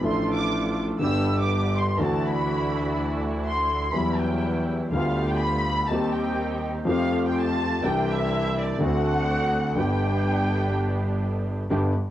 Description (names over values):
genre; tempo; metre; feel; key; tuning
tango; 123 BPM; 4/4; rubato; G major; A4 = 440 Hz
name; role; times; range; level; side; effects
warm concert grand piano; accompaniment; 0.0-11.9 s; G1 to A4; -24 LUFS; left 1 dB; cassette tape
muted studio string section; stabs; 0.0-11.9 s; F#3 to G4; -34 LUFS; right 4 dB; cassette tape
clear double bass; bass; 0.0-11.9 s; G1 to F2; -31 LUFS; right 1 dB; none
warm studio violin section; second line; 0.1-11.2 s; D5 to E6; -29 LUFS; equal; cassette tape
room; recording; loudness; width
light reverb, studio reverb; home recording on cassette; -22 LUFS; side -12 dB against mid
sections
0.0-11.7 A section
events
violin section solo 0.0-11.7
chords
0.0 Dm/A; 1.0 G; 2.0 Dadd9; 4.0 Emadd9; 4.9 G7/D; 5.9 Cm/Eb; 6.9 Fadd9; 7.8 Cadd9; 8.8 D7; 9.8 G